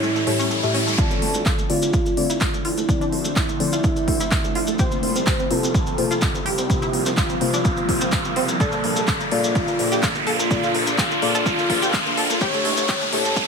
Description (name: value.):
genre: progressive house.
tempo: 126 BPM.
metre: 4/4.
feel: straight.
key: D minor.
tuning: A4 = 437 Hz.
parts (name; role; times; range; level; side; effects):
expressive synth lead; melody; 0.0-13.5 s; E4 to C#5; -26 LUFS; right 1 dB; analog chorus, cassette tape, sidechain pumping, ping-pong delay.
shimmering ambient pad; sustained chords; 0.0-13.5 s; A2 to A4; -30 LUFS; equal; chorus, built-in reverb, phaser, sidechain pumping.
analog pluck; arpeggios; 0.0-13.3 s; A3 to A4; -28 LUFS; right 2 dB; lush chorus, sidechain pumping, ping-pong delay.
deep mellow chord stab; stabs; 0.0-13.5 s; A2 to E5; -27 LUFS; left 4 dB; chorus, sidechain pumping, ping-pong delay.
maracas; percussion; 0.0-13.5 s; none; -31 LUFS; left 2 dB; none.
riser; sound effects; 0.0-13.5 s; none; -26 LUFS; equal; none.
deep house drum kit; drums; 0.3-13.5 s; handclaps, hi-hat; -27 LUFS; equal; studio reverb.
electronic kick drum; drums; 1.0-13.5 s; none; -23 LUFS; right 1 dB; overdrive, studio reverb.
dark detuned saw bass; bass; 1.2-13.3 s; A1 to D2; -33 LUFS; right 1 dB; none.
room: light reverb, digital ambience.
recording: high-pass filter.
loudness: -18 LUFS.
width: side -5 dB against mid.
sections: 1.0-13.5 A section.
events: riser 0.0-1.0, 1.0-13.5; build-up 1.0-13.5; filter sweep on synth pluck 1.0-13.5; filter sweep 1.0-13.5.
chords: 0.0 A7; 1.0 Dm7; 4.8 C7sus4; 8.6 Bbmaj7; 12.4 A7.